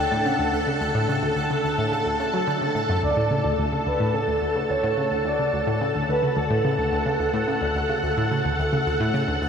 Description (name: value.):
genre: ambient, sequencer-driven space music.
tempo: 108 BPM.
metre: 4/4.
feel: straight.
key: D major.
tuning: A4 = 439 Hz.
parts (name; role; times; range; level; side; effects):
breathy flute-like synth lead; melody; 0.0-7.3 s; A4 to G5; -28 LUFS; equal; lush chorus, shimmer reverb, ping-pong delay.
string machine, full ensemble; sustained chords; 0.0-9.5 s; D4 to A5; -24 LUFS; equal; ensemble chorus, shimmer reverb.
analog pluck; riff; 0.0-9.5 s; D2 to F#3; -25 LUFS; equal; chorus, phaser, ping-pong delay.
pulsing gated texture; texture; 0.0-9.5 s; F#5 to F#6; -40 LUFS; right 4 dB; none.
room: wet huge ambient reverb, RT60 7.6 s.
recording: none.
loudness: -21 LUFS.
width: side -7 dB against mid.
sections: 0.0-3.0 A section; 3.0-9.5 B section.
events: none.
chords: 0.0 Dmaj7.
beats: 0.25 | 0.81 1.36 1.92 2.48 | 3.03 3.59 4.14 4.70 | 5.25 5.81 6.36 6.92 | 7.47 8.03 8.59 9.14.